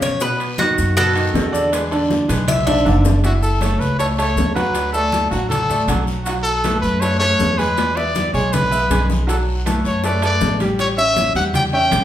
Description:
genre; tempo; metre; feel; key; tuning
latin, salsa; 159 BPM; 4/4; straight; unclear; A4 = 438 Hz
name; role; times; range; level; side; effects
Cuban tres; melody; 0.0-3.0 s; F#4 to E5; -19 LUFS; equal; none
bright grand piano; accompaniment; 0.0-12.0 s; B2 to G#5; -22 LUFS; right 1 dB; none
upright bass; bass; 0.0-12.0 s; F#1 to B2; -21 LUFS; equal; none
bongos; percussion; 0.0-12.0 s; none; -28 LUFS; left 4 dB; none
congas; percussion; 0.0-12.0 s; none; -27 LUFS; left 1 dB; none
guiro; percussion; 0.0-12.0 s; none; -35 LUFS; left 4 dB; none
maracas; percussion; 0.0-12.0 s; none; -35 LUFS; left 5 dB; none
timbales; percussion; 0.0-12.0 s; none; -28 LUFS; right 3 dB; none
bright trumpet; melody; 3.2-12.0 s; F#4 to G5; -19 LUFS; equal; none
room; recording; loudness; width
wet large studio reverb, RT60 0.8 s; band playing live in one room; -15 LUFS; side -11 dB against mid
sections
0.0-3.2 A section; 3.2-12.0 B section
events
Cuban tres solo 0.0-3.2; drum fill 2.7-3.2, 7.8-9.3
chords
0.2 B7; 1.7 E7; 3.2 F#m7; 4.8 D; 6.3 B5; 7.8 E; 9.3 Bm7; 10.8 A7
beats
| 0.22 0.60 0.97 1.35 | 1.73 2.11 2.48 2.86 | 3.24 3.62 4.00 4.38 | 4.75 5.13 5.51 5.89 | 6.27 6.64 7.02 7.40 | 7.78 8.15 8.53 8.91 | 9.29 9.66 10.04 10.42 | 10.79 11.17 11.55 11.93

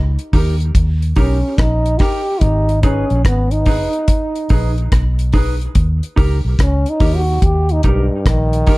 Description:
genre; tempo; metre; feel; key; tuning
roots reggae; 72 BPM; 4/4; swing 65% on 16ths; G# harmonic minor; A4 = 440 Hz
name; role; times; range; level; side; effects
breathy trombone; melody; 0.0-8.8 s; G2 to G4; -19 LUFS; equal; tape echo
vintage muted fingered electric bass; bass; 0.0-8.6 s; G#1 to D#2; -16 LUFS; equal; none
deep reggae drum kit; drums; 0.2-8.8 s; hi-hat, kick drum, rim click; -16 LUFS; equal; none
mellow electric guitar; accompaniment; 0.3-8.8 s; D#4 to B4; -24 LUFS; right 2 dB; tape echo, plate reverb
room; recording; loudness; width
light reverb; dark, warm production; -13 LUFS; side -21 dB against mid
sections
0.0-8.8 A section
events
trombone solo 0.0-8.8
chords
0.0 D#; 2.4 G#m; 5.8 D#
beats
0.75 1.59 | 2.42 3.25 4.09 4.92 | 5.75 6.59 7.42 8.25

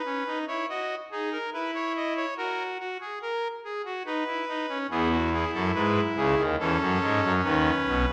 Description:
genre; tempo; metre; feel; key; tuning
classical, baroque-style 3-part fugue for pipe organ; 71 BPM; 3/4; straight; unclear; A4 = 439 Hz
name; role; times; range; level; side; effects
pipe organ, trumpet; solo; 0.0-8.1 s; B1 to D#5; -27 LUFS; equal; none
room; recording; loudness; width
wet recital hall reverb, RT60 1.4 s; none; -28 LUFS; mono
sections
0.0-8.1 A section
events
none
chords
0.0 B; 1.5 C#m7/E; 2.4 F#; 4.1 B/D#; 4.9 E; 6.6 F#m7/E; 7.4 B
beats
0.69 1.53 | 2.37 3.21 4.05 | 4.89 5.74 6.58 | 7.44

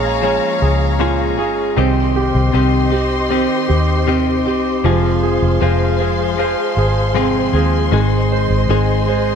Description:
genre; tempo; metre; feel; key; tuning
pop; 78 BPM; 4/4; straight; F minor; A4 = 438 Hz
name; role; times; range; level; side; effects
clear concert grand piano; accompaniment; 0.0-9.4 s; F3 to Db5; -19 LUFS; right 7 dB; tape echo
warm studio string section; sustained chords; 0.0-9.4 s; G4 to C6; -22 LUFS; left 3 dB; none
direct-recorded clean electric guitar; arpeggios; 0.0-9.4 s; F2 to Ab4; -20 LUFS; left 14 dB; none
vintage muted fingered electric bass; bass; 0.0-9.4 s; F1 to Eb2; -18 LUFS; equal; none
room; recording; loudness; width
light reverb, small room ambience; echo-heavy mix; -13 LUFS; side -7 dB against mid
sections
0.0-9.4 A section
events
none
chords
0.0 Bbm7; 1.8 Cm; 4.8 Fm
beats
0.23 1.00 | 1.77 2.54 3.31 4.08 | 4.85 5.62 6.38 7.16 | 7.92 8.69

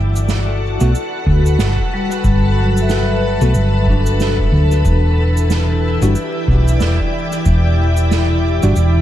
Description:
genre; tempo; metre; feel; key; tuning
ambient dub; 92 BPM; 4/4; swing 60% on 16ths; E minor; A4 = 442 Hz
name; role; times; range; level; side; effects
soft additive organ-like pad; sustained chords; 0.0-9.0 s; E3 to D5; -20 LUFS; left 1 dB; ensemble chorus, built-in reverb
hollow-body short-scale fingered electric bass; bass; 0.0-9.0 s; E1 to D2; -14 LUFS; equal; none
cabasa and snare drum; drums; 0.2-8.9 s; none; -25 LUFS; right 4 dB; dub echo
tine electric piano; stabs; 0.8-8.7 s; G3 to F#4; -24 LUFS; equal; medium stereo tremolo, dub echo
electronic kick drum; drums; 1.3-7.6 s; none; -20 LUFS; equal; none
vibraphone with medium hard mallets; arpeggios; 1.9-6.8 s; F#3 to E5; -24 LUFS; equal; dub echo
room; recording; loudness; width
small room ambience; vinyl crackle; -13 LUFS; side -12 dB against mid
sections
0.0-9.0 A section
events
none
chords
0.0 Gmaj9; 4.8 Em7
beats
0.28 0.94 1.59 | 2.24 2.89 3.55 4.20 | 4.85 5.50 6.15 6.81 | 7.46 8.11 8.76

